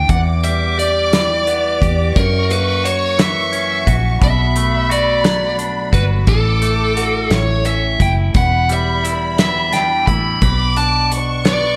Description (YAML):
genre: six-eight pop ballad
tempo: 58 BPM (dotted quarters)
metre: 6/8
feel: straight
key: unclear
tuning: A4 = 440 Hz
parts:
  - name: biting lead guitar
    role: melody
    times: 0.0-11.8 s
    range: A4 to B5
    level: -20 LUFS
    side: equal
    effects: overdrive
  - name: direct-recorded clean electric guitar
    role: accompaniment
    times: 0.0-11.8 s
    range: E2 to G4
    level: -25 LUFS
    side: equal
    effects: phaser
  - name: vintage muted fingered electric bass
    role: bass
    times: 0.0-11.8 s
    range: E1 to F#2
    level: -21 LUFS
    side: equal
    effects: none
  - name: dark studio violin section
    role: second line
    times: 0.1-11.8 s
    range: B5 to D6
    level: -26 LUFS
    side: equal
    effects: slapback echo
  - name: loose indie drum kit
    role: drums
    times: 0.1-11.6 s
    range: hi-hat, kick drum, snare drum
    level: -20 LUFS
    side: equal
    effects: none
room: light reverb, studio ambience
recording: none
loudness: -16 LUFS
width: mono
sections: 0.0-11.8 A section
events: none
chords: 0.1 Em; 2.2 F#7; 4.2 Bm7; 6.3 D/A; 7.3 A; 8.3 Em7; 10.4 Bmadd9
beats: | 0.09 1.13 | 2.16 3.19 | 4.21 5.24 | 6.27 7.31 | 8.35 9.39 | 10.42 11.45